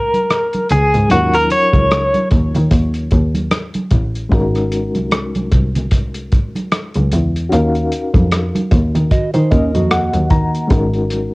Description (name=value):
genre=lush 1970s-style soul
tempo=75 BPM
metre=4/4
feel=swing 58% on 16ths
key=Eb dorian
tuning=A4 = 441 Hz
part: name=direct-recorded clean electric guitar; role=melody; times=0.0-2.3 s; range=Gb4 to Db5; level=-14 LUFS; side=equal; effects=tremolo
part: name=reed electric piano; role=accompaniment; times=0.0-11.3 s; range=Gb3 to Bb5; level=-21 LUFS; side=left 2 dB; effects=fast tremolo, cassette tape
part: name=bright double bass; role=bass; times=0.0-11.2 s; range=Ab1 to Eb3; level=-17 LUFS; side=equal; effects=none
part: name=warm soul drum kit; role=drums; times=0.1-11.3 s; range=hi-hat, kick drum, rim click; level=-16 LUFS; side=equal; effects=cassette tape
part: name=congas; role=percussion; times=0.1-11.3 s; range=none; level=-23 LUFS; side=right 2 dB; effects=none
part: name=mellow electric guitar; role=riff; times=9.1-10.7 s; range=Bb3 to Eb5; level=-20 LUFS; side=right 3 dB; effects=cassette tape
room=little or no reverb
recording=home recording on cassette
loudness=-13 LUFS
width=side -24 dB against mid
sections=0.0-11.3 A section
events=reed electric piano fill 9.1-10.7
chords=0.0 Ab7sus4; 1.1 Ebm7; 4.3 Ab7sus4; 7.5 Ebm7; 10.7 Ab7sus4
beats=0.31 | 1.11 1.91 2.71 3.51 | 4.32 5.12 5.92 6.71 | 7.51 8.31 9.11 9.91 | 10.71